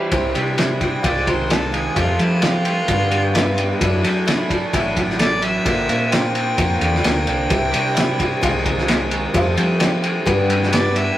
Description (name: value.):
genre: folk rock and heartland rock.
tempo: 130 BPM.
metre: 4/4.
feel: straight.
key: C major.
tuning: A4 = 440 Hz.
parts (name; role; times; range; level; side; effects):
clear upright piano; accompaniment; 0.0-11.2 s; D4 to F5; -29 LUFS; left 1 dB; none.
picked steel-string acoustic guitar; accompaniment; 0.0-11.2 s; F2 to A4; -26 LUFS; left 1 dB; none.
twelve-string electric guitar; riff; 0.0-11.2 s; G2 to G4; -26 LUFS; right 3 dB; spring reverb.
hollow-body short-scale fingered electric bass; bass; 0.1-11.1 s; A1 to F#3; -24 LUFS; equal; none.
cloth-damped thuddy drum kit; drums; 0.1-11.1 s; kick drum, ride cymbal, snare drum; -19 LUFS; equal; none.
mellow harmonica; melody; 0.8-11.2 s; E4 to G5; -23 LUFS; equal; none.
room: moderate studio reverb, RT60 0.6 s.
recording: rough rehearsal-room recording, warm saturation.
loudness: -16 LUFS.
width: side -13 dB against mid.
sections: 0.1-11.2 A section.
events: harmonica solo 0.1-11.2; upright piano fill 3.1-3.8.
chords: 0.1 C; 1.0 Ab6/C; 2.0 Fadd9; 2.9 G; 3.8 Dadd9/F#; 5.7 Bbadd9; 7.5 C; 8.4 Ab6/C; 9.3 Fadd9; 10.3 G.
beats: | 0.12 0.58 1.04 1.50 | 1.96 2.43 2.89 3.35 | 3.81 4.27 4.74 5.20 | 5.66 6.12 6.58 7.04 | 7.50 7.96 8.43 8.89 | 9.35 9.81 10.27 10.73.